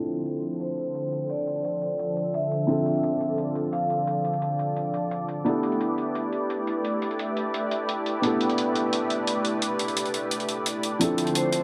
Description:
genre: liquid drum and bass.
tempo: 173 BPM.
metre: 4/4.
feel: straight.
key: D dorian.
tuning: A4 = 439 Hz.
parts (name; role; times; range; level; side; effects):
felt-muted upright piano; accompaniment; 0.0-11.6 s; F3 to A4; -31 LUFS; equal; delay.
lush unison pad; sustained chords; 0.1-11.6 s; D3 to D5; -31 LUFS; equal; chorus, phaser.
electronic hi-hat; drums; 0.1-11.6 s; none; -34 LUFS; equal; high-pass filter on hats, high-pass filter on perc, high-pass filter on snare, high-pass filter on cymbals.
vibraphone with medium hard mallets; melody; 0.6-5.2, 11.4-11.6 s; C5 to F5; -31 LUFS; equal; low-pass filter, delay.
room: moderate digital room reverb, RT60 1.0 s.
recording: low-pass filter.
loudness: -27 LUFS.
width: mono.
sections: 0.0-11.0 A section.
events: filter sweep on analog synth pad 0.0-11.0; filter sweep 0.0-11.0.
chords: 0.0 Dm9; 5.5 A9sus4; 11.0 Dm9.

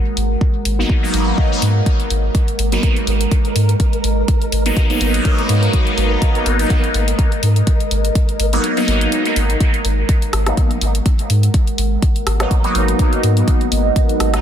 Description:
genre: dub techno.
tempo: 124 BPM.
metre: 4/4.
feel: swing 55% on 16ths.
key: G# minor.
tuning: A4 = 439 Hz.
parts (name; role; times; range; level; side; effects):
deep dark ambient pad; sustained chords; 0.0-14.4 s; G#3 to F#5; -24 LUFS; right 2 dB; chorus, built-in reverb, sidechain pumping.
soft dub sub bass; bass; 0.2-14.4 s; G#1 to G#2; -17 LUFS; equal; sidechain pumping.
deep house drum kit; drums; 0.2-14.4 s; hi-hat, rim click; -24 LUFS; left 1 dB; soft clipping on snare.
electronic kick drum; drums; 0.4-14.1 s; none; -15 LUFS; equal; none.
resonant sweep polysynth; stabs; 0.8-14.4 s; F#3 to D#4; -20 LUFS; equal; chorus, phaser, sidechain pumping, dub echo.
flickering grainy texture; texture; 2.6-9.6 s; A#4; -28 LUFS; equal; built-in reverb, sidechain pumping.
room: digital ambience.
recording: dense, heavily limited modern master.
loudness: -14 LUFS.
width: side -9 dB against mid.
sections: 0.0-9.6 A section; 9.6-14.4 A section.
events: kick drops out 8.6-9.6; filter sweep on analog polysynth 9.6-14.4.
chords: 0.0 G#m9.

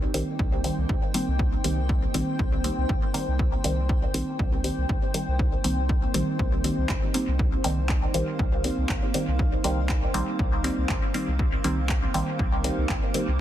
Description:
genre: dub techno.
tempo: 120 BPM.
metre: 4/4.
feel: swing 55% on 16ths.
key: C minor.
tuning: A4 = 440 Hz.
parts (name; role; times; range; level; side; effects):
granular cloud pad; sustained chords; 0.0-13.4 s; Bb3 to G5; -33 LUFS; equal; built-in reverb, sidechain pumping.
soft dub sub bass; bass; 0.0-13.4 s; Bb1 to C2; -28 LUFS; equal; sidechain pumping.
filtered dub chord stab; stabs; 0.1-13.3 s; Eb3 to C4; -29 LUFS; equal; chorus, phaser, sidechain pumping, dub echo.
punchy analog drum machine; drums; 0.1-13.3 s; handclaps, hi-hat; -33 LUFS; left 1 dB; dub echo.
electronic kick drum; drums; 0.4-13.0 s; none; -26 LUFS; equal; none.
room: little or no reverb.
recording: dense, heavily limited modern master.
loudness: -23 LUFS.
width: side -12 dB against mid.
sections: 0.0-13.4 A section.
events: none.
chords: 0.0 Cm7.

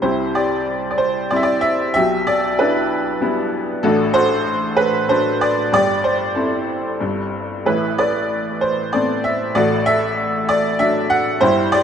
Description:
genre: classical, lyrical solo piano.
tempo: 95 BPM.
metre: 3/4.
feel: rubato.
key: C major.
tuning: A4 = 440 Hz.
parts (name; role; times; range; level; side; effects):
bright upright piano; solo; 0.0-11.8 s; G1 to F#5; -16 LUFS; equal; none.
room: moderate scoring stage reverb, RT60 1.6 s.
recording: dark, warm production.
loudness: -16 LUFS.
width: side -8 dB against mid.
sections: 0.0-11.8 A section.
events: none.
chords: 0.0 C; 2.0 G6/B; 3.8 D/A; 5.7 C/G; 7.7 Amadd9; 9.6 D/A.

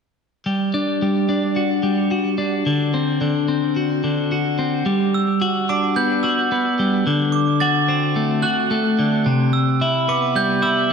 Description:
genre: rock.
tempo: 109 BPM.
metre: 4/4.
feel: straight.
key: G major.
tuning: A4 = 440 Hz.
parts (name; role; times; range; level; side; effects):
twelve-string electric guitar; arpeggios; 0.5-10.9 s; C3 to F#4; -18 LUFS; left 1 dB; analog delay, slapback echo.
glockenspiel with brass mallets; arpeggios; 5.1-10.9 s; D6 to A6; -22 LUFS; right 5 dB; analog delay, slapback echo.
room: wet lush hall reverb, RT60 2.2 s.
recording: big arena sound.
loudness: -17 LUFS.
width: side -6 dB against mid.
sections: 0.5-4.9 A section; 4.9-10.9 B section.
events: none.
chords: 0.5 G5; 2.7 D7; 4.9 Gmaj7; 7.1 D7; 9.3 Cmaj7.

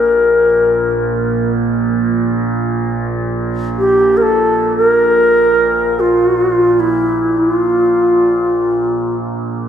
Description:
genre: world meditative, free-time meditation music.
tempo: free time.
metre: none.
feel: none.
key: unclear.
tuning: A4 = 440 Hz.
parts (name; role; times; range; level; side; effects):
bright reedy bansuri; melody; 0.0-9.2 s; E4 to Bb4; -12 LUFS; equal; analog delay.
overtone-sweeping drone; drone; 0.0-9.7 s; Bb1 to Bb2; -18 LUFS; right 2 dB; chorus, built-in reverb, phaser.
room: wet echo chamber reverb, RT60 1.8 s, studio reverb.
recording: echo-heavy mix.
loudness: -12 LUFS.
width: side -8 dB against mid.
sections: 0.0-9.7 A section.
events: none.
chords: none.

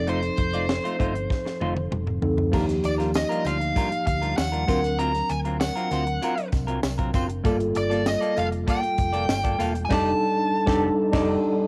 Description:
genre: polished 1980s jazz-funk pop.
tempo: 98 BPM.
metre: 4/4.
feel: straight.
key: unclear.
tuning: A4 = 438 Hz.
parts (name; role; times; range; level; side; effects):
nasal lead guitar with a parked wah; melody; 0.0-11.7 s; C5 to A#5; -30 LUFS; equal; overdrive.
mellow tine electric piano; accompaniment; 0.0-11.7 s; F3 to A#4; -29 LUFS; equal; analog chorus, cassette tape.
hollow-body short-scale fingered electric bass; bass; 0.0-11.3 s; E1 to Eb2; -32 LUFS; equal; none.
semi-hollow electric guitar; riff; 0.1-11.3 s; F#3 to F5; -33 LUFS; equal; subtle chorus, cassette tape.
tight funk drum kit; drums; 0.1-11.3 s; crash cymbal, hi-hat, kick drum, snare drum, toms; -30 LUFS; equal; cassette tape.
tambourine; percussion; 2.5-9.7 s; none; -47 LUFS; equal; none.
room: light reverb, small room reverb.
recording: home recording on cassette.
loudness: -24 LUFS.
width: mono.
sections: 0.0-2.5 A section; 2.5-11.7 B section.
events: drum fill 1.3-2.5; band accent 9.9-11.7.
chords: 0.0 F7; 2.5 Ebmaj9; 4.7 D7alt; 7.4 Gm9; 9.9 F13.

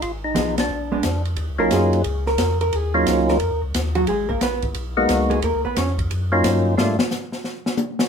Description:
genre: soul jazz organ trio.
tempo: 178 BPM.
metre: 4/4.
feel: swing 65% on 8ths.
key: Eb minor.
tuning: A4 = 436 Hz.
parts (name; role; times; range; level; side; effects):
percussive tonewheel organ; melody; 0.0-7.0 s; Gb3 to Gb4; -20 LUFS; equal; slow rotary speaker, overdrive.
tonewheel organ; bass; 0.0-7.0 s; Ab1 to Ab2; -24 LUFS; equal; chorus vibrato, slow rotary speaker.
open jazz drum kit; drums; 0.0-8.1 s; hi-hat, kick drum, ride cymbal, snare drum, toms; -25 LUFS; left 1 dB; none.
hollow-body jazz guitar; accompaniment; 0.3-5.9 s; F3 to Db5; -23 LUFS; right 1 dB; none.
room: moderate club reverb, RT60 0.8 s.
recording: minimal, uncompressed stereo recording.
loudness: -18 LUFS.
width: side -6 dB against mid.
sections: 0.0-1.4 A section; 1.4-8.1 B section.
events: band accent 0.5; hollow-body jazz guitar solo 1.4-8.1; drum solo 6.8-8.1.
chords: 0.0 Fm7b5; 0.7 Bb7b9; 1.4 Ebm9; 4.1 Abm9; 5.4 Ebm9; 6.8 Absus2.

